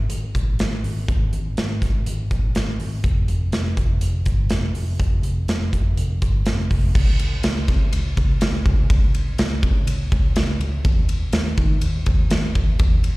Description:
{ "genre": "jangly indie pop", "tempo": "123 BPM", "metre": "4/4", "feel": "straight", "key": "unclear", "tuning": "A4 = 441 Hz", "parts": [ { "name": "vintage muted picked electric bass", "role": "bass", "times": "0.0-13.2 s", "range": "F1 to Eb3", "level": "-22 LUFS", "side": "equal", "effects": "none" }, { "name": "big rock drum kit", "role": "drums", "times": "0.1-13.2 s", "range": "crash cymbal, hi-hat, kick drum, ride cymbal, snare drum", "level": "-20 LUFS", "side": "equal", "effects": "none" } ], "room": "little or no reverb", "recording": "live gig heard through the venue's PA, recital hall reverb", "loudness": "-18 LUFS", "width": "side -21 dB against mid", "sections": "0.0-6.9 A section; 6.9-13.2 B section", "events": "none", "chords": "none", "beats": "0.10 0.59 | 1.08 1.57 2.06 2.55 | 3.04 3.53 4.01 4.50 | 4.99 5.48 5.97 6.46 | 6.95 7.44 7.92 8.41 | 8.90 9.39 9.87 10.36 | 10.85 11.34 11.82 12.31 | 12.80" }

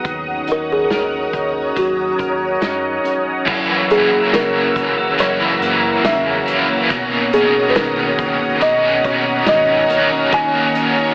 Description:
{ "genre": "dream pop", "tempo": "70 BPM", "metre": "4/4", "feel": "straight", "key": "unclear", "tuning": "A4 = 445 Hz", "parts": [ { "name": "string machine, cellos", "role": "sustained chords", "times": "0.0-11.1 s", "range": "C#5 to E6", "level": "-20 LUFS", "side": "equal", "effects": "ensemble chorus" }, { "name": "clean electric guitar", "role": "arpeggios", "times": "0.0-11.1 s", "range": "F#2 to A#4", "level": "-23 LUFS", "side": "equal", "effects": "analog chorus, digital delay" }, { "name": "sub bass with octave", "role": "bass", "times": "0.0-11.1 s", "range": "D#1 to B2", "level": "-38 LUFS", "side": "equal", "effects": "none" }, { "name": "vintage drum kit", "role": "drums", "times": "0.0-11.0 s", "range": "crash cymbal, hi-hat, kick drum, snare drum, tambourine", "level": "-25 LUFS", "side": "equal", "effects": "none" }, { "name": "kalimba", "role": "melody", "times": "0.5-11.1 s", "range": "F#4 to G#5", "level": "-18 LUFS", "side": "equal", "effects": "digital delay" }, { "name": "cranked stack guitar", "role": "accompaniment", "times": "3.5-11.1 s", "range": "F#2 to F#4", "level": "-18 LUFS", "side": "equal", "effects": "overdrive, tremolo, lush chorus" }, { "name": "vibraphone with medium hard mallets", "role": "texture", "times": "4.3-6.3 s", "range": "A#4", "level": "-30 LUFS", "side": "equal", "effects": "none" } ], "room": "moderate huge ambient reverb, RT60 5.4 s", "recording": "AM radio sound", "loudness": "-14 LUFS", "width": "side -32 dB against mid", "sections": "0.0-3.5 A section; 3.5-11.1 B section", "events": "none", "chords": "0.0 D#m7; 3.5 F#7; 6.9 Bmaj9; 10.3 D#m7", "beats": "| 0.05 0.91 1.76 2.62 | 3.48 4.33 5.19 6.05 | 6.91 7.76 8.62 9.48 | 10.33" }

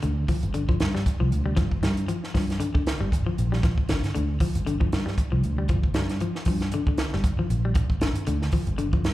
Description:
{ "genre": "afrobeat", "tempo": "116 BPM", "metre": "4/4", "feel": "swing 56% on 16ths", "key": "G minor", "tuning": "A4 = 436 Hz", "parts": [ { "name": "electric guitar at the edge of break-up", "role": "arpeggios", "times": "0.0-9.1 s", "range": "D3 to G3", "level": "-30 LUFS", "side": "left 4 dB", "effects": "slapback echo" }, { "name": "fingered electric bass", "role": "bass", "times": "0.0-9.1 s", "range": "G1 to G2", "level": "-25 LUFS", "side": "right 1 dB", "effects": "none" }, { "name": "compact cocktail drum kit", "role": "drums", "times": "0.0-9.1 s", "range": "hi-hat, kick drum, snare drum", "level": "-26 LUFS", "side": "equal", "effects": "none" } ], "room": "small room ambience", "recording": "live gig heard through the venue's PA, club reverb", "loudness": "-22 LUFS", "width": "side -16 dB against mid", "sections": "0.0-9.1 A section", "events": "none", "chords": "0.0 G7(no3)", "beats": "0.03 0.54 1.06 | 1.57 2.09 2.60 3.12 | 3.63 4.15 4.66 5.18 | 5.70 6.21 6.73 7.24 | 7.76 8.27 8.79" }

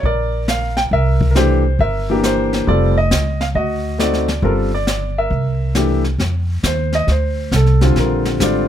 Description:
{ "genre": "jazz piano trio", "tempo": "136 BPM", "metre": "4/4", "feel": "swing 66% on 8ths", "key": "unclear", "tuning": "A4 = 441 Hz", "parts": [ { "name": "clear concert grand piano", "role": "melody", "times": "0.0-8.7 s", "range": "D3 to G5", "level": "-18 LUFS", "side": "left 1 dB", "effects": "none" }, { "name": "upright bass", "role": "bass", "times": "0.0-8.7 s", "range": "F1 to F2", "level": "-17 LUFS", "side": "right 1 dB", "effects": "none" }, { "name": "jazz brush drum kit", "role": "drums", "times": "0.0-8.7 s", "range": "brushed snare drum, hi-hat, kick drum, snare drum", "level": "-23 LUFS", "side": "left 2 dB", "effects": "none" } ], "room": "little or no reverb", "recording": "close, detailed microphones", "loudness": "-14 LUFS", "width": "side -10 dB against mid", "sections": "0.0-6.2 A section; 6.2-8.7 B section", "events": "grand piano solo 6.2-8.7", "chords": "0.0 Gm7 (rootless); 0.9 C9; 2.7 F9; 3.6 D7b9; 4.4 G7(no3); 5.3 C13; 6.2 F13; 8.0 Bb13", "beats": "0.04 0.48 | 0.92 1.36 1.80 2.24 | 2.68 3.12 3.56 4.00 | 4.44 4.88 5.32 5.76 | 6.20 6.64 7.08 7.52 | 7.96 8.40" }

